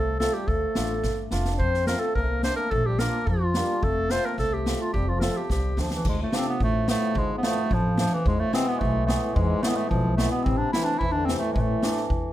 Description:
klezmer; 108 BPM; 2/4; straight; F major, D dorian sharp4 from 6.1 s; A4 = 441 Hz
warm clarinet; melody; 0.0-12.0 s; E3 to C5; -27 LUFS; equal
breathy trombone; second line; 0.0-12.1 s; E2 to D4; -32 LUFS; left 3 dB
upright bass; bass; 0.0-12.3 s; F1 to F2; -28 LUFS; equal
hammered dulcimer; accompaniment; 0.2-12.3 s; E3 to F4; -31 LUFS; right 1 dB
street-band drum kit; drums; 0.2-12.2 s; crash cymbal, kick drum, snare drum; -29 LUFS; equal
light reverb; -22 LUFS; side -13 dB against mid
0.0-6.1 A section; 6.1-12.3 B section
drum fill 1.0-1.6, 5.5-6.1
0.5 Dm; 1.6 F; 2.7 Bb; 3.8 F; 6.1 Dm; 8.3 E; 10.5 Am

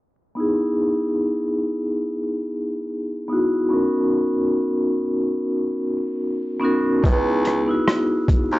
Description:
lo-fi hip hop; 72 BPM; 4/4; swing 55% on 16ths; A4 = 436 Hz
vibraphone with medium hard mallets; accompaniment; 0.4-8.6 s; B3 to A#4; -20 LUFS; equal; low-pass filter
clear baritone saxophone; bass; 7.0-8.6 s; C#2 to D#2; -22 LUFS; equal; transformer saturation
boom bap sampler-style drum kit; drums; 7.0-8.5 s; hi-hat, kick drum, rim click; -19 LUFS; equal
kalimba; melody; 7.1-8.6 s; B4; -27 LUFS; right 4 dB; low-pass filter, tape echo
light reverb; dry, gritty hardware recording, vinyl crackle, low-pass filter, nothing above 7.9 kHz; -19 LUFS; side -18 dB against mid
0.4-7.0 A section; 7.0-8.6 B section
filter sweep 0.4-7.0
0.4 Badd11; 3.7 Bmaj9; 7.0 C#m9

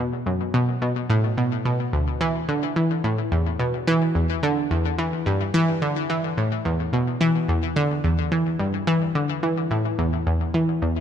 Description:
ambient; 108 BPM; 4/4; straight; A4 = 440 Hz
analog pluck; solo; 0.0-11.0 s; D2 to E3; -20 LUFS; equal; chorus, ping-pong delay
moderate plate reverb, RT60 3.3 s; -20 LUFS; side -9 dB against mid
0.0-11.0 A section

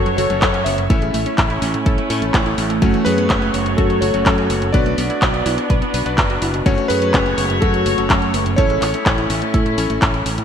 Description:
italo disco; 125 BPM; 4/4; straight; F# minor; A4 = 439 Hz
warm electric grand piano; melody; 0.0-10.0 s; F#4 to E5; -22 LUFS; equal; wide subtle chorus, ping-pong delay
rich chamber string section; sustained chords; 0.0-10.4 s; F#3 to C#5; -23 LUFS; right 2 dB
analog pluck; arpeggios; 0.0-10.4 s; F#2 to B4; -26 LUFS; right 2 dB; chorus, ping-pong delay
clear electric grand piano; stabs; 0.0-10.4 s; A3 to D5; -25 LUFS; left 5 dB
modern bright fingered electric bass; bass; 0.0-10.4 s; F#1 to A2; -23 LUFS; equal; tube saturation
house drum kit; drums; 0.1-10.4 s; handclaps, hi-hat; -22 LUFS; equal; gated reverb
electronic kick drum; drums; 0.4-10.1 s; -18 LUFS; equal
moderate lush hall reverb, RT60 2.1 s; bright 1980s-style digital production; -15 LUFS; side -8 dB against mid
0.0-10.4 A section
0.0 F#m; 0.9 A; 2.8 F#m; 4.7 Bm; 6.7 F#m; 8.6 A

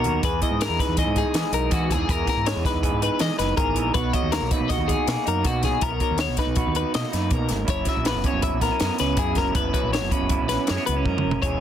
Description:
math rock and midwest emo; 161 BPM; 5/4; straight; A4 = 439 Hz
electric guitar through a small old amp; accompaniment; 0.0-11.6 s; E2 to G#4; -26 LUFS; right 8 dB
twelve-string electric guitar; arpeggios; 0.0-11.6 s; F#4 to E5; -26 LUFS; left 10 dB
growling fingered electric bass; bass; 0.0-11.6 s; E1 to E3; -27 LUFS; equal; overdrive
compact cocktail drum kit; drums; 0.0-11.5 s; hi-hat, kick drum, snare drum, toms; -26 LUFS; equal
light reverb; dense, heavily limited modern master; -20 LUFS; side -10 dB against mid
0.0-11.4 A section
drum fill 11.0-11.4
0.2 Emaj7; 4.0 Bmaj7; 7.7 F#7sus4

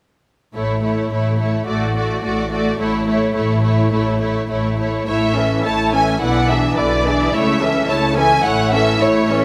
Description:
quick classical-period movement for string orchestra; 107 BPM; 2/4; straight; A major; A4 = 439 Hz
rich studio violin section; melody; 0.5-9.4 s; C#5 to A5; -23 LUFS; equal
warm studio viola section; accompaniment; 0.5-9.4 s; D3 to E4; -22 LUFS; equal
dark studio cello section; bass; 0.5-9.4 s; A2 to C#3; -26 LUFS; equal
warm studio double bass section; bass; 0.5-9.4 s; A1 to C#2; -26 LUFS; equal
rich studio violin section; second line; 0.6-9.4 s; E4 to E5; -25 LUFS; equal
moderate recital hall reverb, RT60 1.5 s; -17 LUFS; mono
0.5-5.1 A section; 5.1-9.4 B section
0.5 A; 6.2 E7/B; 7.3 A/C#; 8.4 A

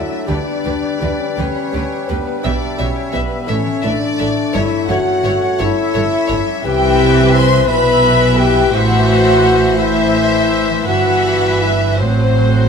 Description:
classical, slow romantic movement for symphony orchestra; 57 BPM (dotted quarters); 6/8; rubato; A4 = 440 Hz
clear clarinet; second line; 0.0-12.7 s; A4 to E5; -27 LUFS; left 1 dB
mellow hollow large flute ensemble; second line; 0.0-12.7 s; B4 to C6; -23 LUFS; right 1 dB
warm chamber violin section; second line; 0.0-12.7 s; B4 to C6; -24 LUFS; left 4 dB
warm bassoon; accompaniment; 0.0-12.7 s; E3 to A3; -25 LUFS; right 3 dB
mellow French horn section; sustained chords; 0.0-12.7 s; B3 to C5; -17 LUFS; left 4 dB
concert harp; arpeggios; 0.0-12.7 s; G2 to E6; -26 LUFS; left 8 dB
warm chamber violin section; melody; 0.3-12.7 s; B4 to E5; -23 LUFS; left 2 dB
warm chamber viola section; accompaniment; 0.3-12.7 s; E3 to C5; -25 LUFS; left 1 dB
warm chamber cello section; bass; 0.3-12.7 s; G2 to D3; -20 LUFS; right 2 dB
warm studio double bass section; bass; 0.3-12.7 s; G1 to D2; -20 LUFS; right 4 dB
moderate scoring stage reverb, RT60 2.1 s; -12 LUFS; side -6 dB against mid
0.0-12.7 A section
0.3 G/D; 2.4 Em7/B; 3.5 A5; 4.5 A7/G; 6.6 Cmaj7; 8.7 Am; 10.9 Em/G; 12.0 F#dim/A

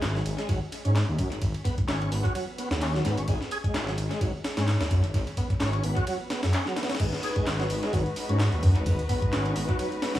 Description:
breakbeat, breaks; 129 BPM; 4/4; swing 56% on 16ths; G# minor; A4 = 439 Hz
overdriven tonewheel organ; riff; 0.0-10.1 s; F#3 to G#4; -33 LUFS; equal; chorus vibrato, slow rotary speaker, tube saturation, analog delay
detuned saw bass; bass; 0.0-10.2 s; G#1 to G#2; -27 LUFS; equal; tube saturation
breakbeat sampler-style drum kit; drums; 0.0-10.2 s; crash cymbal, hi-hat, kick drum, ride cymbal, snare drum; -28 LUFS; equal; analog delay
punchy analog drum machine; drums; 0.0-10.2 s; handclaps, hi-hat; -38 LUFS; equal
dark studio string section; sustained chords; 7.0-10.2 s; G#3 to B4; -32 LUFS; left 1 dB; sidechain pumping
light reverb, digital ambience; echo-heavy mix, vinyl crackle, small room ambience; -24 LUFS; side -14 dB against mid
0.0-7.0 A section; 7.0-10.2 B section
drop 7.0-10.2
0.0 G#m7

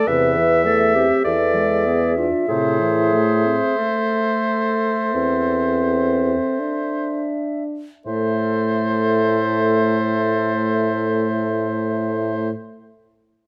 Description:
classical, slow romantic movement for wind quintet; 39-53 BPM; 4/4; rubato; A minor; A4 = 443 Hz
concert flute; melody; 0.0-12.5 s; E5; -29 LUFS; equal
clear oboe; second line; 0.0-12.5 s; C5 to E5; -26 LUFS; equal
mellow French horn; accompaniment; 0.0-12.5 s; C3 to D4; -27 LUFS; equal
warm clarinet; accompaniment; 0.0-12.5 s; F4 to B4; -26 LUFS; equal
mellow bassoon; bass; 0.1-12.5 s; E2 to A2; -24 LUFS; equal
moderate recital hall reverb, RT60 1.5 s; close, detailed microphones; -19 LUFS; mono
0.0-8.1 A section; 8.1-13.5 B section
slowing down 0.0-8.1
0.1 Am/E; 1.2 E7; 2.5 Am

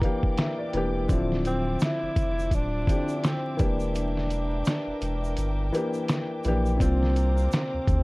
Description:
lo-fi hip hop; 84 BPM; 4/4; swing 58% on 16ths; A4 = 442 Hz
clear upright piano; accompaniment; 0.0-8.0 s; C3 to Bb5; -29 LUFS; left 1 dB; cassette tape, low-pass filter
warm chamber string section; sustained chords; 0.0-8.0 s; Bb4 to D6; -40 LUFS; equal; low-pass filter
lo-fi sampler-style drum kit; drums; 0.0-8.0 s; finger snaps, hi-hat, kick drum, snare drum; -25 LUFS; equal
saturated sub bass; bass; 0.7-8.0 s; D1 to D2; -27 LUFS; equal
egg shaker; percussion; 1.1-8.0 s; -50 LUFS; right 4 dB
breathy tenor saxophone; melody; 1.5-8.0 s; C4 to E4; -31 LUFS; equal; low-pass filter
light reverb; dark, warm production, vinyl crackle; -24 LUFS; side -23 dB against mid
0.0-6.8 A section; 6.8-8.0 B section
kick muted 4.0-6.8
0.0 Em7b5; 1.1 Dm9; 3.6 Em7b5; 6.8 C9sus4

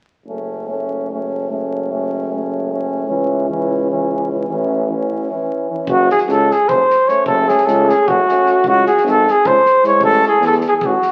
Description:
balkan folk, Balkan brass band; 303 BPM (eighths); 7/8; straight; F# minor; A4 = 438 Hz
clear euphonium; accompaniment; 0.3-10.2 s; C#4 to E4; -26 LUFS; equal
warm euphonium; accompaniment; 0.3-10.2 s; E3 to A3; -26 LUFS; equal
clear tuba; bass; 0.3-10.9 s; F#1 to E2; -24 LUFS; equal
mellow trumpet; melody; 5.9-11.1 s; F#4 to C#5; -14 LUFS; equal
natural country drum kit; percussion; 5.9-11.1 s; kick drum, snare drum; -37 LUFS; equal
wet large studio reverb, RT60 1.4 s; very old 78 rpm record, vinyl crackle; -16 LUFS; mono
0.3-5.9 A section; 5.9-11.1 B section
break 5.3-5.9
0.3 F#m; 3.1 C#m; 4.5 A; 5.9 F#m; 8.6 C#m; 10.0 A5

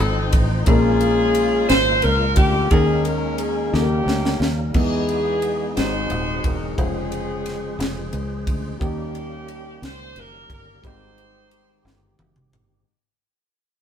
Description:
slow gospel; 59 BPM (dotted quarters); 6/8; straight; Ab major; A4 = 435 Hz
clear saxophone section; melody; 0.0-12.2 s; Bb3 to C5; -23 LUFS; equal
warm concert grand piano; accompaniment; 0.0-12.9 s; Ab2 to A5; -25 LUFS; left 3 dB
tonewheel organ; sustained chords; 0.0-12.9 s; Db3 to C5; -31 LUFS; right 1 dB; slow rotary speaker, overdrive, chorus vibrato
fingered electric bass; bass; 0.0-12.8 s; Eb1 to E2; -24 LUFS; equal
tight funk drum kit; drums; 0.3-12.7 s; crash cymbal, kick drum, ride cymbal, snare drum, toms; -22 LUFS; equal
moderate stone room reverb, RT60 1.1 s; band playing live in one room; -18 LUFS; side -8 dB against mid
0.0-12.9 A section
fade-out 2.3-12.9; drum fill 3.7-4.7, 11.8-12.9
0.0 F7; 0.7 Bbm7; 2.7 Eb7sus4; 3.7 Eb7; 4.7 Emaj7; 5.8 Ab7; 6.8 Dbmaj7/F; 8.8 Eb7; 10.8 Abmaj7

